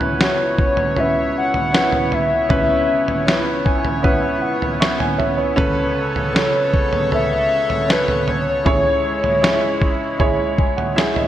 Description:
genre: pop ballad.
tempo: 78 BPM.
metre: 4/4.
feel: straight.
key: C# minor.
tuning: A4 = 440 Hz.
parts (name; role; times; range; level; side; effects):
dark baby grand piano; accompaniment; 0.0-11.3 s; C#2 to C#6; -20 LUFS; right 1 dB; none.
chorused pulse-width pad; sustained chords; 0.0-11.3 s; C#3 to C#5; -25 LUFS; left 2 dB; none.
lo-fi sampler-style drum kit; drums; 0.0-11.3 s; kick drum, snare drum, toms; -20 LUFS; equal; gated reverb.
hollow clarinet-like synth lead; melody; 0.2-10.9 s; B4 to F#5; -20 LUFS; left 1 dB; chorus.
room: moderate lush hall reverb, RT60 2.2 s.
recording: bright 1980s-style digital production.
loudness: -15 LUFS.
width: side -12 dB against mid.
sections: 0.0-11.3 A section.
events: grand piano fill 3.3-5.6, 10.2-11.3.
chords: 0.0 C#m7; 5.6 Aadd9/C#; 8.7 C#m.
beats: 0.20 0.97 1.74 | 2.50 3.27 4.04 4.81 | 5.58 6.35 7.12 7.89 | 8.66 9.43 10.20 10.97.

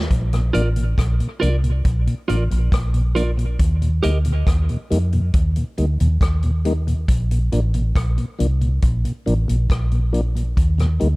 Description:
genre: dub reggae.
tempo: 69 BPM.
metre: 4/4.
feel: straight.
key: Bb major.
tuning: A4 = 443 Hz.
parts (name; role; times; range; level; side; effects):
vintage muted fingered electric bass; bass; 0.0-11.2 s; A1 to F2; -18 LUFS; equal; none.
vintage drum kit; drums; 0.1-11.2 s; hi-hat, kick drum, rim click; -21 LUFS; equal; none.
mellow tonewheel organ; accompaniment; 0.3-11.1 s; Eb2 to Eb4; -24 LUFS; left 1 dB; slow rotary speaker.
clean electric guitar; accompaniment; 0.5-4.2 s; F4 to Eb5; -26 LUFS; right 3 dB; dub echo.
room: little or no reverb.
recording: dark, warm production.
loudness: -17 LUFS.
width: side -23 dB against mid.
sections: 0.1-11.2 A section.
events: none.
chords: 0.1 Bb; 3.6 Eb; 7.1 N.C.; 10.6 Eb.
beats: | 0.10 0.98 1.85 2.72 | 3.60 4.47 5.34 6.21 | 7.08 7.96 8.83 9.70 | 10.57.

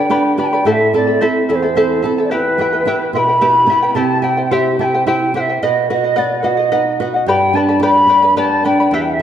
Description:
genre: andean folk, Andean ensemble.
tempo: 73 BPM (dotted quarters).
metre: 6/8.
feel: straight.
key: unclear.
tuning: A4 = 435 Hz.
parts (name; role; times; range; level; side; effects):
large quena; melody; 0.0-9.2 s; B4 to C6; -15 LUFS; equal; none.
charango; accompaniment; 0.0-9.2 s; E4 to B5; -17 LUFS; left 2 dB; none.
flamenco guitar; accompaniment; 0.0-9.2 s; E2 to C5; -18 LUFS; right 4 dB; none.
room: wet recital hall reverb, RT60 1.7 s.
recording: none.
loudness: -12 LUFS.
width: side -9 dB against mid.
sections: 0.0-4.0 A section; 4.0-9.2 B section.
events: nylon-string guitar fill 3.2-4.0.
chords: 0.0 G; 0.7 Am; 2.3 Em; 4.0 C; 5.6 B; 7.3 G.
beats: | 0.67 1.50 | 2.33 3.15 | 3.98 4.80 | 5.63 6.45 | 7.28 8.10 | 8.92.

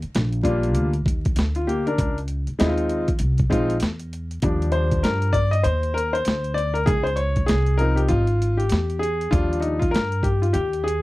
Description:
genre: hip hop, jazz-hop.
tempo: 98 BPM.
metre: 4/4.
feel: swing 61% on 16ths.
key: Eb major.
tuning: A4 = 440 Hz.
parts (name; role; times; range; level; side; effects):
upright bass; bass; 0.0-11.0 s; Ab1 to G2; -23 LUFS; equal; none.
boom bap sampler-style drum kit; drums; 0.0-11.0 s; hi-hat, kick drum, snare drum; -24 LUFS; equal; overdrive.
warm grand piano; accompaniment; 0.4-11.0 s; F3 to Eb5; -23 LUFS; left 1 dB; none.
room: little or no reverb.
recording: dry, close 1970s-style studio recording, vinyl crackle.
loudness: -19 LUFS.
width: side -18 dB against mid.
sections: 0.0-4.4 A section; 4.4-11.0 B section.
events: grand piano solo 4.4-11.0.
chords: 0.0 Ebmaj9; 2.0 Dbmaj9; 4.4 Ebmaj9; 6.9 Dbmaj9; 9.3 Ebmaj9.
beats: 0.14 0.76 1.37 | 1.98 2.59 3.21 3.82 | 4.43 5.04 5.65 6.27 | 6.88 7.49 8.10 8.71 | 9.33 9.94 10.55.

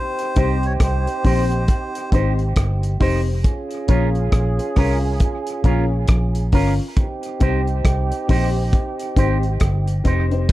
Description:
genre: roots reggae.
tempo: 68 BPM.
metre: 4/4.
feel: swing 60% on 16ths.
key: unclear.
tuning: A4 = 440 Hz.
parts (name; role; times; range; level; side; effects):
melodica; melody; 0.0-2.1 s; C5 to Db5; -28 LUFS; left 2 dB; tape echo.
mellow trombone section; second line; 0.0-10.5 s; F3 to Ab4; -27 LUFS; right 3 dB; tape echo.
cloth-damped thuddy drum kit; drums; 0.2-10.5 s; crash cymbal, hi-hat, kick drum, rim click; -19 LUFS; equal; none.
electric guitar with an envelope filter; accompaniment; 0.4-10.3 s; Db4 to C5; -28 LUFS; right 4 dB; tape echo.
warm upright piano; stabs; 0.4-10.5 s; C4 to Db5; -24 LUFS; left 6 dB; none.
vintage muted fingered electric bass; bass; 0.4-10.5 s; F1 to C2; -20 LUFS; equal; none.
room: little or no reverb.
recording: dark, warm production.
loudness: -17 LUFS.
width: side -16 dB against mid.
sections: 0.0-10.5 A section.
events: none.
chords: 0.0 Cm; 3.4 Bbm; 7.0 Cm.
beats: 0.80 1.69 2.57 | 3.45 4.33 5.21 6.09 | 6.97 7.85 8.73 9.61 | 10.49.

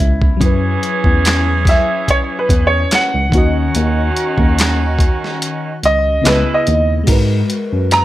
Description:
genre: R&B, neo-soul.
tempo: 72 BPM.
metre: 4/4.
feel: swing 54% on 16ths.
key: unclear.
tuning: A4 = 440 Hz.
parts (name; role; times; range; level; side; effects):
clear baby grand piano; melody; 0.0-8.0 s; E4 to A#5; -16 LUFS; right 1 dB; slapback echo.
FM electric piano with soft pad layer; accompaniment; 0.0-8.0 s; C#3 to D#5; -20 LUFS; left 2 dB; chorus.
mellow tine electric piano; bass; 0.0-8.0 s; C#2 to G#2; -16 LUFS; equal; medium stereo tremolo.
boom bap sampler-style drum kit; drums; 0.0-8.0 s; crash cymbal, handclaps, hi-hat, kick drum, rim click, snare drum; -16 LUFS; equal; none.
edgy saxophone section; stabs; 0.4-6.6 s; B2 to G#4; -21 LUFS; right 3 dB; none.
room: digital ambience.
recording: none.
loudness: -12 LUFS.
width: side -15 dB against mid.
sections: 0.0-7.1 A section.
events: grand piano solo 0.0-7.1; kick muted 5.4-7.1.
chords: 0.4 F#7sus4; 3.3 D#m7; 6.2 C#m9; 7.1 G#m9.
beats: | 0.40 1.24 2.07 2.90 | 3.74 4.57 5.40 6.24 | 7.07 7.90.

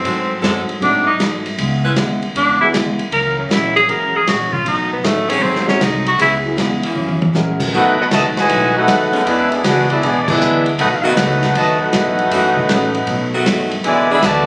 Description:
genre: jazz, big band swing.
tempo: 156 BPM.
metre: 4/4.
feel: swing 66% on 8ths.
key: B major from 7.7 s.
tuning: A4 = 439 Hz.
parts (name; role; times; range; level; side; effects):
breathy tenor saxophone; melody; 0.0-6.4 s; A3 to A#4; -18 LUFS; equal; none.
picked steel-string acoustic guitar; accompaniment; 0.0-14.5 s; F#2 to A#4; -26 LUFS; equal; none.
edgy saxophone section; sustained chords; 0.0-1.9, 5.3-14.2 s; D3 to B4; -24 LUFS; equal; none.
upright bass; bass; 0.0-14.5 s; F#1 to B2; -28 LUFS; equal; none.
vintage drum kit; drums; 0.1-14.3 s; crash cymbal, hi-hat, kick drum, ride cymbal, snare drum, toms; -23 LUFS; equal; none.
clear baby grand piano; accompaniment; 0.8-7.7 s; F#3 to A#4; -26 LUFS; equal; none.
mellow trumpet section; melody; 7.7-14.5 s; B3 to B5; -18 LUFS; equal; none.
bright trombone section; second line; 7.7-14.5 s; A2 to F#4; -22 LUFS; equal; none.
room: moderate large studio reverb, RT60 1.1 s.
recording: recorded on a phone in the room, club reverb.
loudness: -16 LUFS.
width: mono.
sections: 0.0-7.7 A section; 7.7-14.5 B section.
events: tenor saxophone solo 0.0-7.7; drum fill 7.0-7.3; band accent 10.2.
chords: 0.1 G#7b9; 1.6 C#m7; 3.1 F#7; 4.7 B7; 5.4 G#7b9; 6.2 C#m7; 7.0 F#7; 7.7 B7; 9.3 E7; 10.8 F#m7; 13.1 B7; 13.9 E7.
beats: | 0.05 0.43 0.82 1.20 | 1.58 1.97 2.35 2.74 | 3.12 3.50 3.89 4.27 | 4.65 5.04 5.42 5.80 | 6.19 6.57 6.95 7.34 | 7.72 8.10 8.49 8.87 | 9.25 9.64 10.02 10.40 | 10.79 11.17 11.55 11.94 | 12.32 12.70 13.09 13.47 | 13.85 14.23.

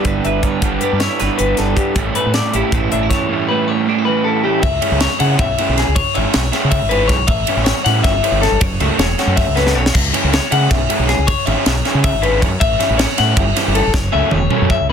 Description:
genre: math rock and midwest emo.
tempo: 316 BPM (eighths).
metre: 7/8.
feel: straight.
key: unclear.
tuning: A4 = 440 Hz.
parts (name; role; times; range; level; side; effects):
twelve-string electric guitar; accompaniment; 0.0-4.6 s; G2 to B4; -20 LUFS; right 10 dB; spring reverb.
clean electric guitar; arpeggios; 0.0-14.9 s; G4 to F#5; -19 LUFS; left 6 dB; plate reverb.
raw garage guitar; riff; 0.0-14.9 s; G2 to F#4; -20 LUFS; right 2 dB; overdrive, spring reverb.
crisp fusion drum kit; drums; 0.0-14.8 s; crash cymbal, hi-hat, kick drum, ride cymbal, snare drum, splash cymbal, toms; -18 LUFS; equal; none.
growling fingered electric bass; bass; 0.1-14.9 s; E1 to C#3; -19 LUFS; equal; overdrive.
room: little or no reverb.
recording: dense, heavily limited modern master.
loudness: -13 LUFS.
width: side -7 dB against mid.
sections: 0.0-4.6 A section; 4.6-14.9 B section.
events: drum fill 9.7, 13.9-14.9.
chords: 0.0 G6; 2.0 A7sus4; 4.6 C#m7; 7.3 A5; 8.6 F#m7; 10.0 C#m7; 12.6 A5; 13.9 F#m7.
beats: 0.05 0.24 0.43 | 0.62 0.81 1.01 1.20 1.39 1.58 1.77 | 1.96 2.15 2.34 2.54 2.73 2.92 3.11 | 3.30 3.49 3.68 3.87 4.06 4.25 4.45 | 4.64 4.83 5.02 5.21 5.40 5.59 5.78 | 5.97 6.16 6.35 6.54 6.73 6.92 7.11 | 7.30 7.49 7.68 7.87 8.06 8.25 8.44 | 8.63 8.82 9.01 9.20 9.39 9.57 9.77 | 9.96 10.14 10.33 10.52 10.71 10.90 11.09 | 11.28 11.47 11.66 11.85 12.04 12.23 12.42 | 12.61 12.80 12.99 13.18 13.37 13.56 13.75 | 13.94 14.13 14.32 14.51 14.70 14.89.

